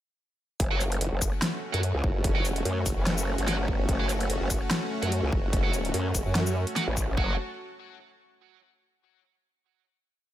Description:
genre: heavy wobble dubstep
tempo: 146 BPM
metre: 4/4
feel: swing 55% on 16ths, half-time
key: F# phrygian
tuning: A4 = 441 Hz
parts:
  - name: supersaw pad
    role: sustained chords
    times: 0.6-7.4 s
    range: A3 to A5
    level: -34 LUFS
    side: equal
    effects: sidechain pumping
  - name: growl bass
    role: bass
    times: 0.6-7.4 s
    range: F#1 to F#2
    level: -28 LUFS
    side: equal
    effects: chorus, overdrive
  - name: big-room dance drum kit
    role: drums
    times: 0.6-7.1 s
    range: hi-hat, shaker, snare drum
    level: -30 LUFS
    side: equal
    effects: overdrive
  - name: electronic kick drum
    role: drums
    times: 0.6-7.3 s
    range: none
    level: -28 LUFS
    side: equal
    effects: overdrive
  - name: tight distorted guitar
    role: stabs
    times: 0.7-7.3 s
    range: F#4 to F#5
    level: -35 LUFS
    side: right 4 dB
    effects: distortion, ping-pong delay
  - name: formant-sweep wobble bass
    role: bass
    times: 1.0-6.7 s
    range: F#1 to F#2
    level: -28 LUFS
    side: equal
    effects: chorus, overdrive
room: little or no reverb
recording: none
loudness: -25 LUFS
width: side -13 dB against mid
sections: 0.6-7.2 drop; 7.2-8.8 final chord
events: drop 0.6-7.2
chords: 0.6 F#m

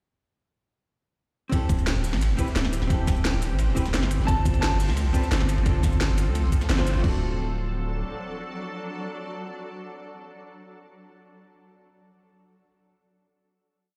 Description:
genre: liquid drum and bass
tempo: 174 BPM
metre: 4/4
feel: straight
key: D mixolydian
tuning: A4 = 439 Hz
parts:
  - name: archtop guitar, miked and amplified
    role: accompaniment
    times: 1.5-11.3 s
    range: A3 to C5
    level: -36 LUFS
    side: equal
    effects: digital delay
  - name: shimmering ambient pad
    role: sustained chords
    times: 2.3-10.6 s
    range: E3 to A4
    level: -38 LUFS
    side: equal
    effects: chorus, built-in reverb
  - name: crunchy breakbeat drum kit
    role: drums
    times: 1.5-7.0 s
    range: hi-hat, ride cymbal, snare drum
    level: -39 LUFS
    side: equal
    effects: high-pass filter on cymbals, high-pass filter on hats, high-pass filter on snare, high-pass filter on room
  - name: drum and bass drum kit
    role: drums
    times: 1.5-7.1 s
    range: cabasa, crash cymbal, hi-hat, snare drum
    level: -33 LUFS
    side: equal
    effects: none
  - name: electronic kick drum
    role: drums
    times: 1.5-7.1 s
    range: none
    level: -26 LUFS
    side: equal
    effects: none
  - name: long sustained 808-style bass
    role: bass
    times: 1.7-8.0 s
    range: D1 to D2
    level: -27 LUFS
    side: equal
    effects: tube saturation
  - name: clear grand piano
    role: melody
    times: 4.3-5.3 s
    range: A5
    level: -34 LUFS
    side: equal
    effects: digital delay
room: light reverb, studio ambience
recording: played on a big sound system in a bare room, stone room reverb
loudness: -25 LUFS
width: mono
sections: 1.5-7.0 drop; 7.0-9.8 final chord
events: drop 1.5-7.0; band accent 6.7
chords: 1.5 D9sus4; 4.1 G9sus4; 7.0 D

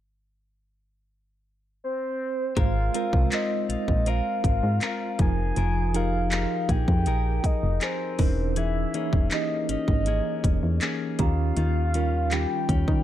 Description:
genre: contemporary R&B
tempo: 80 BPM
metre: 4/4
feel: straight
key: Ab major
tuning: A4 = 440 Hz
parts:
  - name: soft octave-layered synth lead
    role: melody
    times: 1.8-13.0 s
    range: C5 to Ab5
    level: -30 LUFS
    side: equal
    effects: chorus, phaser, tape echo
  - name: mellow tine electric piano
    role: accompaniment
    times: 2.6-13.0 s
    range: Eb3 to Db5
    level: -31 LUFS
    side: right 2 dB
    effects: medium stereo tremolo
  - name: direct-recorded clean electric guitar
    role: arpeggios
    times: 2.6-13.0 s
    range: Eb3 to Bb4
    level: -33 LUFS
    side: left 10 dB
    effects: none
  - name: solid FM bass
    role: bass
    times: 2.6-13.0 s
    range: Fb1 to Eb3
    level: -25 LUFS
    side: equal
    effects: none
  - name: trap drum kit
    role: drums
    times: 2.6-13.0 s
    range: handclaps, hi-hat, kick drum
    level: -26 LUFS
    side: equal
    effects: none
  - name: worn celesta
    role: texture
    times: 2.6-12.3 s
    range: C5 to Bb5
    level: -42 LUFS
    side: right 10 dB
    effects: tape echo
room: digital ambience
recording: dark, warm production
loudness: -22 LUFS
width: side -12 dB against mid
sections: 0.0-2.6 A section; 2.6-13.0 B section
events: none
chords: 0.0 N.C.; 2.6 Ab69; 5.2 Fm11; 8.2 Dbm6/Fb; 11.2 Eb9

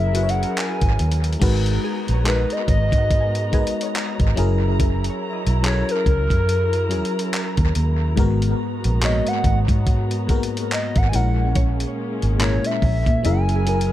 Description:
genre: contemporary R&B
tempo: 71 BPM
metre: 4/4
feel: swing 58% on 16ths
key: G# minor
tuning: A4 = 440 Hz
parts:
  - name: hollow clarinet-like synth lead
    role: melody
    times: 0.0-13.9 s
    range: A#4 to G#5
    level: -26 LUFS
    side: left 1 dB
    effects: chorus, tape echo
  - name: FM electric piano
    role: accompaniment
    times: 0.0-13.9 s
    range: G#2 to C#5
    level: -25 LUFS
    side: left 3 dB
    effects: chorus, tape echo
  - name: dark studio string section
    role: sustained chords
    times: 0.0-13.9 s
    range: F#3 to A#5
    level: -31 LUFS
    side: right 1 dB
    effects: sidechain pumping
  - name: vintage muted fingered electric bass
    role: bass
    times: 0.0-13.9 s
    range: F#1 to A#2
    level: -20 LUFS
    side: equal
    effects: none
  - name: dusty soul sampler-style drum kit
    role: drums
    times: 0.1-13.9 s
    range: crash cymbal, handclaps, hi-hat, kick drum, rim click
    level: -22 LUFS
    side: equal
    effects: tape echo
  - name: glassy wavetable pluck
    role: texture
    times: 0.2-6.1, 11.6-13.9 s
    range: E4 to G#5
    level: -34 LUFS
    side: left 2 dB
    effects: chorus, tape echo
room: little or no reverb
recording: echo-heavy mix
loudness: -18 LUFS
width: side -13 dB against mid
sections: 0.0-1.4 A section; 1.4-13.9 A section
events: none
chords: 0.0 F#9; 1.4 G#m9; 4.4 F#7; 8.2 G#m9; 11.1 A#m7b5; 13.2 F#9

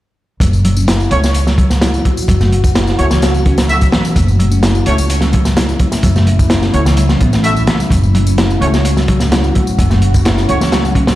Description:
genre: breakbeat, breaks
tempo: 128 BPM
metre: 4/4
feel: straight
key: F# minor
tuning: A4 = 440 Hz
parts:
  - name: deep dark ambient pad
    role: sustained chords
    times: 1.4-11.2 s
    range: A3 to F#4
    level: -21 LUFS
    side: equal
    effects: chorus, built-in reverb, sidechain pumping
  - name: picked electric bass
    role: riff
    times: 0.4-11.2 s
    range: E3 to E4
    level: -19 LUFS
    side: left 1 dB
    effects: tape echo
  - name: upright bass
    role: bass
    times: 0.4-11.2 s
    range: F#1 to C#2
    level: -14 LUFS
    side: equal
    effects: none
  - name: crunchy breakbeat drum kit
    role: drums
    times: 0.4-11.2 s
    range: hi-hat, kick drum, snare drum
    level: -14 LUFS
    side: equal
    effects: none
  - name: tambourine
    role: drums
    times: 0.4-11.2 s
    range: none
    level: -29 LUFS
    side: left 2 dB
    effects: overdrive
  - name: warm horn section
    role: stabs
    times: 1.1-10.6 s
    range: A3 to E5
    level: -20 LUFS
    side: right 1 dB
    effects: tape echo
room: light reverb, studio reverb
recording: played on a big sound system in a bare room, large studio reverb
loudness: -10 LUFS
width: side -15 dB against mid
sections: 0.4-11.2 A section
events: none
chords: 0.4 F#m

